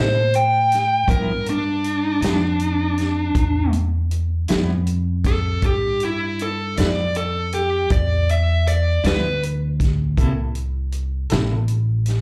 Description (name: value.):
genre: slow blues.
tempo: 53 BPM (dotted quarters).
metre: 12/8.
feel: straight.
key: unclear.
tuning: A4 = 445 Hz.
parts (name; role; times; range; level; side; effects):
dark smooth lead guitar; melody; 0.0-9.4 s; D4 to G5; -23 LUFS; equal; overdrive, plate reverb, slapback echo.
clean electric guitar; accompaniment; 0.0-11.5 s; G2 to A4; -29 LUFS; equal; tremolo, plate reverb, slapback echo.
upright bass; bass; 0.0-12.2 s; A1 to A2; -24 LUFS; equal; none.
vintage drum kit; drums; 0.3-12.2 s; hi-hat, kick drum, snare drum; -26 LUFS; equal; none.
room: light reverb.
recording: live gig heard through the venue's PA, club reverb.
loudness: -20 LUFS.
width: mono.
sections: 0.0-12.2 A section.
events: lead electric guitar solo 0.0-12.2.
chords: 0.0 C13; 1.1 G6; 10.2 C6.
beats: | 1.08 2.22 3.36 4.50 | 5.63 6.77 7.91 9.04 | 10.18 11.31.